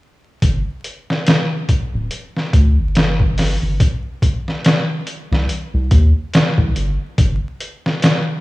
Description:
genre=trip hop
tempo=71 BPM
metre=4/4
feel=swing 57% on 16ths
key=unclear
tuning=A4 = 440 Hz
part: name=round analog bass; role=bass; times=0.4-7.4 s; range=D1 to Eb2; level=-16 LUFS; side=equal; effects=none
part: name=trip hop sampler-style drum kit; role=drums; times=0.4-8.3 s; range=hi-hat, kick drum, snare drum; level=-15 LUFS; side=equal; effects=overdrive
room=light reverb, digital ambience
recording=vinyl crackle, studio reverb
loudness=-15 LUFS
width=side -19 dB against mid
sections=0.4-8.4 A section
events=none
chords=none

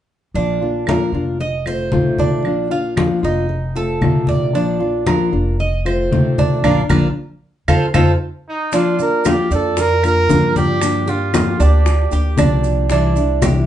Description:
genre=latin, Cuban son and guajira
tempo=115 BPM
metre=4/4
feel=straight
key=Bb major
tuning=A4 = 440 Hz
part: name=nylon-string guitar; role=accompaniment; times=0.3-13.7 s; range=C3 to G4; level=-19 LUFS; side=left 3 dB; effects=none
part: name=upright bass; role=bass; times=0.3-13.6 s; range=F1 to G2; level=-20 LUFS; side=equal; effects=none
part: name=Cuban tres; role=arpeggios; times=0.4-13.7 s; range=D4 to Eb5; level=-22 LUFS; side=right 6 dB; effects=none
part: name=congas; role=percussion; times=0.4-13.7 s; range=none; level=-20 LUFS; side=left 1 dB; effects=none
part: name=claves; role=percussion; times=0.9-13.7 s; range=none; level=-28 LUFS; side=right 3 dB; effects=none
part: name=warm trumpet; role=melody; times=8.5-12.4 s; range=Eb4 to Bb4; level=-19 LUFS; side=right 3 dB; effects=none
part: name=bongos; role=percussion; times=8.7-13.7 s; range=none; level=-25 LUFS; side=left 4 dB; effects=none
part: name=maracas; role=percussion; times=8.7-13.7 s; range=none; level=-32 LUFS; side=right 6 dB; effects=none
room=wet studio reverb, RT60 0.6 s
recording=heard from further back in the room, nothing above 10.6 kHz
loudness=-14 LUFS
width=side -11 dB against mid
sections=0.3-8.7 A section; 8.7-13.7 B section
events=band accent 6.6-8.7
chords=0.3 Bb; 1.4 F7; 2.4 Bb; 3.5 F7; 4.5 Bb; 5.6 F7; 6.6 Bb; 7.7 F7; 8.7 Bb; 10.8 Gm7; 12.9 Cadd9

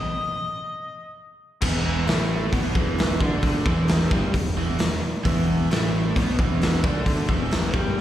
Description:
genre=blues rock power trio and southern rock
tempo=133 BPM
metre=4/4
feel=straight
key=unclear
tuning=A4 = 440 Hz
part: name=clear harmonica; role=melody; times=0.0-1.2 s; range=D#5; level=-30 LUFS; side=left 3 dB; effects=overdrive, slapback echo
part: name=overdriven electric guitar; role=riff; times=1.6-8.0 s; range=E2 to D4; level=-26 LUFS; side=equal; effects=spring reverb, slapback echo
part: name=fuzz fingered electric bass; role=bass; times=1.6-8.0 s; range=E1 to D2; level=-26 LUFS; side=equal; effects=overdrive
part: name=raw garage drum kit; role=drums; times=1.6-8.0 s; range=crash cymbal, hi-hat, kick drum, snare drum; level=-23 LUFS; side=equal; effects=none
room=small room ambience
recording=live gig heard through the venue's PA, recital hall reverb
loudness=-20 LUFS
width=side -12 dB against mid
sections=0.0-1.6 A section; 1.6-8.0 B section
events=stop 0.0-1.6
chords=0.0 N.C.; 1.6 E5

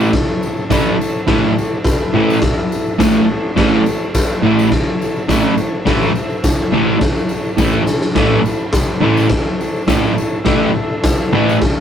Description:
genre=garage rock duo or trio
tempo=105 BPM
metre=4/4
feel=straight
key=A major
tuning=A4 = 440 Hz
part: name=combo organ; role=sustained chords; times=0.0-11.8 s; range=E4 to E5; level=-24 LUFS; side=left 2 dB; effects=spring reverb
part: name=fuzz guitar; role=riff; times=0.0-11.6 s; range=A2 to A3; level=-14 LUFS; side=right 1 dB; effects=distortion
part: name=tambourine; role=percussion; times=0.0-11.6 s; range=none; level=-34 LUFS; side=left 3 dB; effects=none
part: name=raw garage drum kit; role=drums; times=0.1-11.8 s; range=crash cymbal, kick drum, snare drum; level=-17 LUFS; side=equal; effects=none
room=light reverb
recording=rough rehearsal-room recording, tube saturation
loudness=-13 LUFS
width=side -8 dB against mid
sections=0.0-11.8 A section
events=drum fill 7.6-8.2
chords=0.0 A

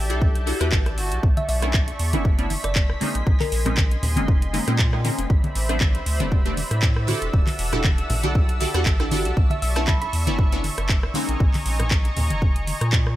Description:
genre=deep house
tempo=118 BPM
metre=4/4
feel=swing 55% on 16ths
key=unclear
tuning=A4 = 436 Hz
part: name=trumpet with bucket mute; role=melody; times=0.0-1.2 s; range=F#4 to G4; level=-36 LUFS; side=right 1 dB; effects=tape echo
part: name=warm analog pad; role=sustained chords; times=0.0-13.2 s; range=C5 to C#6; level=-32 LUFS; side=right 1 dB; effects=chorus, tremolo, sidechain pumping
part: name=round analog bass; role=bass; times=0.0-13.2 s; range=E1 to A#2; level=-25 LUFS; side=equal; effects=tube saturation, sidechain pumping
part: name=soft string machine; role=texture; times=0.0-13.2 s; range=C#6 to B6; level=-37 LUFS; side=equal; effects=ensemble chorus
part: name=filtered dub chord stab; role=stabs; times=0.1-11.7 s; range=G3 to B4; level=-28 LUFS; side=equal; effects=phaser, ensemble chorus, dub echo
part: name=house drum kit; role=drums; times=0.1-13.2 s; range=handclaps, hi-hat, rim click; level=-28 LUFS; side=right 1 dB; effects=small room ambience
part: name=electronic kick drum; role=drums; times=0.2-13.0 s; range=none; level=-20 LUFS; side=equal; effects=small room ambience
part: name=thumb-piano-like synth pluck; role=melody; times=1.4-3.8, 9.5-10.1 s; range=A#4 to B5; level=-31 LUFS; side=equal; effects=chorus, phaser, tape echo
part: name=congas and bongos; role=percussion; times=1.4-12.8 s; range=none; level=-30 LUFS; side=left 1 dB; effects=none
room=little or no reverb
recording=none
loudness=-19 LUFS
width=side -14 dB against mid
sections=0.0-13.2 A section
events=none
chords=0.0 Em11; 1.2 Bm11; 3.0 A#m11; 5.3 Am11; 7.3 Em11; 9.4 Bm11; 11.1 A#m11

